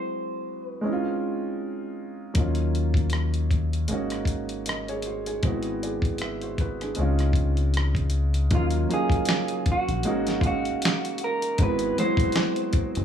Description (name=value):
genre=R&B, neo-soul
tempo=78 BPM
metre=4/4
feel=swing 54% on 16ths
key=unclear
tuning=A4 = 441 Hz
part: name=electric guitar through a small old amp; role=melody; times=0.0-1.2, 8.5-13.0 s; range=F4 to C5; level=-28 LUFS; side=right 1 dB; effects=slapback echo, plate reverb
part: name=warm concert grand piano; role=accompaniment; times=0.0-13.0 s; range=Gb3 to F5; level=-28 LUFS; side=right 1 dB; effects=plate reverb
part: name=dusty soul sampler-style drum kit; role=drums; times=2.3-13.0 s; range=handclaps, hi-hat, kick drum, rim click, snare drum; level=-26 LUFS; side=equal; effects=none
part: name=deep dub fingered electric bass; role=bass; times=2.4-13.0 s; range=Gb1 to Eb2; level=-26 LUFS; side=left 1 dB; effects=none
room=light reverb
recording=small room ambience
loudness=-23 LUFS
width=side -8 dB against mid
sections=0.0-8.5 A section; 8.5-13.0 B section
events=none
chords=0.0 Abaug7; 0.8 Dbmaj7; 2.4 Ebm9; 3.9 Ab7sus4; 5.4 Ab7alt; 7.0 Dbmaj7; 8.5 Ebm9; 10.0 Ab7sus4; 11.6 Ab7alt